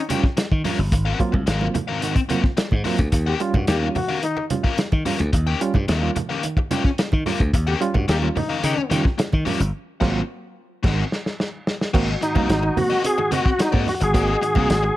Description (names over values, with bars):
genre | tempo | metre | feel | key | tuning
funk | 109 BPM | 4/4 | straight | unclear | A4 = 440 Hz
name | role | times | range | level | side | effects
clear trombone | second line | 0.0-15.0 s | Eb4 to G4 | -28 LUFS | left 4 dB | plate reverb
biting overdriven guitar | accompaniment | 0.1-14.9 s | C4 to G5 | -27 LUFS | left 6 dB | none
reed electric piano | stabs | 0.1-15.0 s | Ab2 to Gb4 | -27 LUFS | right 4 dB | fast tremolo, plate reverb
warm soul drum kit | drums | 0.1-14.8 s | crash cymbal, hi-hat, kick drum, snare drum | -22 LUFS | equal | none
congas | percussion | 0.1-14.7 s | none | -30 LUFS | right 4 dB | none
slap bass | bass | 0.5-14.9 s | G1 to Eb3 | -22 LUFS | equal | none
bright tonewheel organ | melody | 12.2-15.0 s | Eb4 to Ab4 | -21 LUFS | equal | chorus vibrato, plate reverb
room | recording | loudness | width
light reverb | none | -19 LUFS | side -15 dB against mid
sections
0.0-11.9 A section; 11.9-15.0 B section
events
band accent 9.7-11.9; drum fill 10.8-11.9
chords
0.0 Eb9; 0.9 Ab13; 3.1 Eb9; 9.7 Ab9